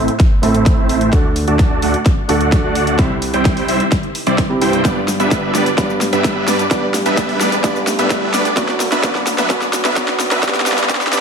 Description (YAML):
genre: EDM, festival progressive house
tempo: 129 BPM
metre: 4/4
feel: straight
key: unclear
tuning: A4 = 440 Hz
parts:
  - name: felt-muted upright piano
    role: accompaniment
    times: 0.0-11.2 s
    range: F#2 to A4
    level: -21 LUFS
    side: right 2 dB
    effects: sidechain pumping, ping-pong delay
  - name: dense compressed supersaw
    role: riff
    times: 0.0-11.2 s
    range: F#3 to A5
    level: -17 LUFS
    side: right 1 dB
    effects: sidechain pumping, low-pass filter, ping-pong delay
  - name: wide detuned saw bass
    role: bass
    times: 0.0-11.2 s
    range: G1 to A2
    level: -26 LUFS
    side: equal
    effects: chorus, sidechain pumping
  - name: riser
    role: sound effects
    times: 1.9-11.2 s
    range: none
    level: -28 LUFS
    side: equal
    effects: none
  - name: big-room dance drum kit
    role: drums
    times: 0.1-11.2 s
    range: hi-hat, shaker, snare drum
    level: -21 LUFS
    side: equal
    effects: overdrive, small room reverb
  - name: electronic kick drum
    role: drums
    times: 0.2-11.0 s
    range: none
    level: -15 LUFS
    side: equal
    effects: overdrive, small room reverb
room: moderate lush hall reverb, RT60 1.5 s, digital ambience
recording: high-pass filter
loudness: -13 LUFS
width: side -6 dB against mid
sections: 0.0-11.2 A section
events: build-up 0.0-11.2; drum fill 0.0-11.2; filter sweep on supersaw synth 0.0-11.2; filter sweep 0.0-11.2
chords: 0.0 Am; 1.1 D; 3.0 C; 4.8 G; 6.7 A5; 8.6 D; 10.4 C5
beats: 0.20 0.66 | 1.13 1.59 2.06 2.52 | 2.99 3.45 3.92 4.38 | 4.85 5.31 5.78 6.24 | 6.71 7.17 7.64 8.10 | 8.57 9.03 9.50 9.96 | 10.43 10.89